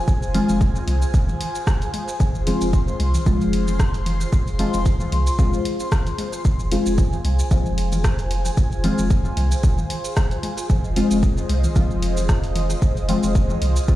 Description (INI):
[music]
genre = dub techno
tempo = 113 BPM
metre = 4/4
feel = swing 55% on 16ths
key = F minor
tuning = A4 = 440 Hz
[part]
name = airy breathy pad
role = sustained chords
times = 0.0-14.0 s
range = F4 to C6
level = -29 LUFS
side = equal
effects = chorus, phaser, sidechain pumping
[part]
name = deep mellow chord stab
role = stabs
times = 0.0-14.0 s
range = F3 to F4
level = -24 LUFS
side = left 2 dB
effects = chorus, phaser, sidechain pumping, dub echo
[part]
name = warm sub bass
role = bass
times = 0.1-13.8 s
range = F1 to C2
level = -23 LUFS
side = equal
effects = sidechain pumping
[part]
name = deep house drum kit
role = drums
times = 0.1-14.0 s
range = hi-hat, rim click, shaker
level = -32 LUFS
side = equal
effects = dub echo
[part]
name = electronic kick drum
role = drums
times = 0.1-14.0 s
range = none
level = -18 LUFS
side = equal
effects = overdrive
[part]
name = electronic toms and congas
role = percussion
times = 0.3-13.7 s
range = none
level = -32 LUFS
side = left 2 dB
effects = sidechain pumping on toms, sidechain pumping on perc, dub echo
[sound]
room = light reverb, digital ambience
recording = played on a big sound system in a bare room, large studio reverb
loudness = -18 LUFS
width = side -15 dB against mid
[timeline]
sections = 0.0-6.5 A section; 6.5-14.0 A section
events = none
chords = 0.0 Fm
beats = | 0.08 0.61 1.14 1.67 | 2.20 2.73 3.26 3.79 | 4.33 4.86 5.39 5.92 | 6.45 6.98 7.51 8.04 | 8.57 9.11 9.64 10.17 | 10.70 11.23 11.76 12.29 | 12.82 13.35 13.88